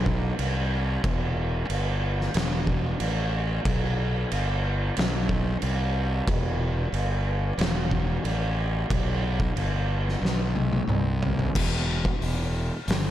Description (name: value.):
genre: stoner and doom metal.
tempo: 91 BPM.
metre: 4/4.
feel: straight.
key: E minor.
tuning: A4 = 440 Hz.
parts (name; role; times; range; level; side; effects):
fuzz fingered electric bass; bass; 0.0-13.1 s; E1 to C2; -26 LUFS; equal; overdrive.
oversized low-tuned drum kit; drums; 0.1-13.0 s; crash cymbal, hi-hat, kick drum, snare drum, toms; -27 LUFS; equal; none.
room: little or no reverb.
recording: dark, warm production.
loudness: -24 LUFS.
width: side -12 dB against mid.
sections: 0.0-11.5 A section; 11.5-13.1 B section.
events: drum fill 10.2-11.5.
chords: none.